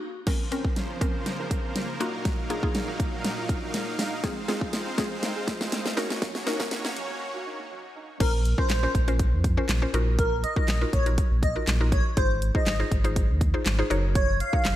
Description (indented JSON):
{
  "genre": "dance-pop",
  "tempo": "121 BPM",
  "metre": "4/4",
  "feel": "straight",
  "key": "Bb minor",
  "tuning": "A4 = 438 Hz",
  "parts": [
    { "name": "mallet-like synth pluck", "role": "accompaniment", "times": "0.0-14.7 s", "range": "Bb3 to Db5", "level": "-32 LUFS", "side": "left 2 dB", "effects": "chorus, sidechain pumping, slapback echo" },
    { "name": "supersaw chords", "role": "sustained chords", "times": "0.3-8.2 s", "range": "Bb2 to F5", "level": "-33 LUFS", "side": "right 1 dB", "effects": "sidechain pumping" },
    { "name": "felt-muted upright piano", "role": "arpeggios", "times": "0.3-8.1 s", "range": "Bb2 to Bb4", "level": "-39 LUFS", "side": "right 3 dB", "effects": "sidechain pumping, slapback echo, tape echo" },
    { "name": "pop drum kit", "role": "drums", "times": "0.3-14.8 s", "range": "crash cymbal, handclaps, hi-hat, kick drum, snare drum", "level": "-26 LUFS", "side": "equal", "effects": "none" },
    { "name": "airy dreamy lead", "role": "melody", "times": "8.2-14.8 s", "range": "Bb4 to F5", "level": "-29 LUFS", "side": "equal", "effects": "chorus, slapback echo, tape echo" },
    { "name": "sub bass with octave", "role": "bass", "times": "8.2-14.8 s", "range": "Gb1 to F2", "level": "-25 LUFS", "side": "equal", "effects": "sidechain pumping" }
  ],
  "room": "light reverb",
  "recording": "high-pass filter",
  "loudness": "-23 LUFS",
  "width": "side -13 dB against mid",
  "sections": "0.3-8.2 A section; 8.2-14.8 B section",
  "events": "break 0.0, 7.2-8.2; build-up 0.3-8.2; drum fill 0.3-7.2; filter sweep 0.3-8.2; drop 8.2-14.8",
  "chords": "0.3 Bbmadd9; 2.0 Ebmadd9/Bb; 4.2 Ab6; 6.0 Gb6; 8.2 Bbmadd9; 9.9 Ebmadd9/Bb; 12.2 Ab6; 13.9 Gb6",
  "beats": "| 0.27 0.77 1.26 1.76 | 2.25 2.75 3.25 3.74 | 4.24 4.73 5.23 5.72 | 6.22 6.72 7.21 7.71 | 8.20 8.70 9.20 9.69 | 10.19 10.68 11.18 11.67 | 12.17 12.67 13.16 13.66 | 14.15 14.65"
}